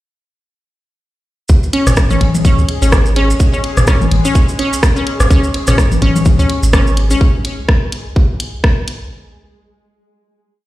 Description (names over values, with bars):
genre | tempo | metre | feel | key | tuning
minimal techno | 126 BPM | 4/4 | swing 57% on 16ths | unclear | A4 = 440 Hz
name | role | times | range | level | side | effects
punchy sub bass | bass | 1.5-7.1 s | G#1 to C#2 | -13 LUFS | equal | sidechain pumping
electronic kick drum | drums | 1.5-8.7 s | none | -11 LUFS | equal | studio reverb
maracas | percussion | 1.5-7.2 s | none | -26 LUFS | right 2 dB | none
bubbling stepped-filter texture | texture | 1.6-7.2 s | G#3 to G#4 | -27 LUFS | equal | chorus, built-in reverb, sidechain pumping
resonant blip pluck | riff | 1.7-7.2 s | C#4 | -18 LUFS | left 1 dB | chorus, sidechain pumping, digital delay
garage drum kit | drums | 1.7-9.0 s | hi-hat, rim click | -19 LUFS | equal | studio reverb
booming analog drum machine | percussion | 1.9-6.8 s | rim click, toms | -17 LUFS | left 2 dB | studio reverb, tape echo
room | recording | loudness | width
light reverb | played on a big sound system in a bare room, stone room reverb | -10 LUFS | side -16 dB against mid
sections
1.5-9.1 drop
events
drop 1.5-9.1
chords
1.5 C#5